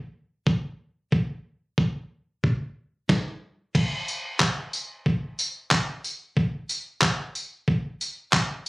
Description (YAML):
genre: pop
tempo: 92 BPM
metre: 4/4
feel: straight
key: none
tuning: none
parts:
  - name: dusty soul sampler-style drum kit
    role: drums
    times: 0.5-8.7 s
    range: crash cymbal, handclaps, kick drum, snare drum, tambourine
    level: -23 LUFS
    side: equal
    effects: none
room: moderate studio reverb, RT60 0.6 s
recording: recorded on a phone in the room, studio reverb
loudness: -24 LUFS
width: side -23 dB against mid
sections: 0.0-3.7 A section; 3.7-8.7 B section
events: none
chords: none